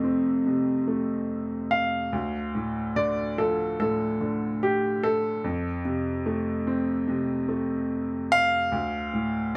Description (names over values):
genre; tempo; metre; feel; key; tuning
pop; 73 BPM; 4/4; straight; F major; A4 = 439 Hz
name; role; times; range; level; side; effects
clear upright piano; accompaniment; 0.0-9.6 s; D2 to C4; -29 LUFS; equal; none
warm grand piano; melody; 1.7-9.6 s; G4 to F5; -28 LUFS; equal; none
room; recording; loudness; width
moderate studio reverb, RT60 0.8 s; band playing live in one room; -27 LUFS; mono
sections
0.0-9.6 A section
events
none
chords
0.0 F; 2.1 Dm; 5.4 F; 8.7 Dm